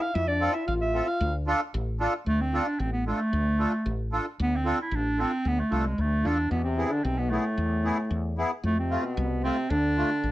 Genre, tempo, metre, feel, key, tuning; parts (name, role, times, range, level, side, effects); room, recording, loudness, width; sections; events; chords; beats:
klezmer; 113 BPM; 2/4; straight; D dorian sharp4; A4 = 438 Hz
clear clarinet; melody; 0.0-10.3 s; G#3 to F5; -27 LUFS; right 1 dB
trombone with bucket mute; second line; 0.0-1.3, 6.5-10.3 s; A2 to F4; -32 LUFS; left 3 dB
woody fretless electric bass; bass; 0.2-10.3 s; A1 to F2; -29 LUFS; equal; wide subtle chorus
accordion; accompaniment; 0.4-10.1 s; A3 to A4; -29 LUFS; equal; light tremolo tuning
moderate studio reverb, RT60 0.6 s; -24 LUFS; side -15 dB against mid
0.0-2.3 A section; 2.3-10.3 B section
clarinet solo 0.0-2.3
0.2 F; 1.2 Dm; 6.5 E; 8.6 F; 9.7 Dm
| 0.15 0.68 | 1.21 1.74 | 2.27 2.80 | 3.33 3.86 | 4.39 4.92 | 5.45 5.98 | 6.51 7.05 | 7.58 8.11 | 8.64 9.17 | 9.70 10.24